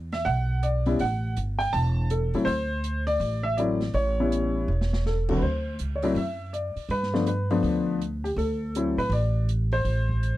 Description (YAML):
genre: jazz piano trio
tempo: 163 BPM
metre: 4/4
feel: swing 63% on 8ths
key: D mixolydian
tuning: A4 = 445 Hz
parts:
  - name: upright bass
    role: bass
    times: 0.0-10.4 s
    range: E1 to A2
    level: -26 LUFS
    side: right 1 dB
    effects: none
  - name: warm upright piano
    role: melody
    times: 0.1-10.4 s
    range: D2 to A5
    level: -26 LUFS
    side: left 1 dB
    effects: none
  - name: open jazz drum kit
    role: drums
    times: 0.1-10.3 s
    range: crash cymbal, hi-hat, kick drum, snare drum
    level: -40 LUFS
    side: right 2 dB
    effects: none
room: little or no reverb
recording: dry, close 1970s-style studio recording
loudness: -23 LUFS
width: side -15 dB against mid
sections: 0.0-5.4 A section; 5.4-10.4 A section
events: drum fill 4.7-5.1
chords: 0.0 E7(no3); 1.0 A5; 2.5 D7(no3); 3.9 A7; 5.4 D7; 6.9 G7; 8.4 D7(no3); 9.9 Am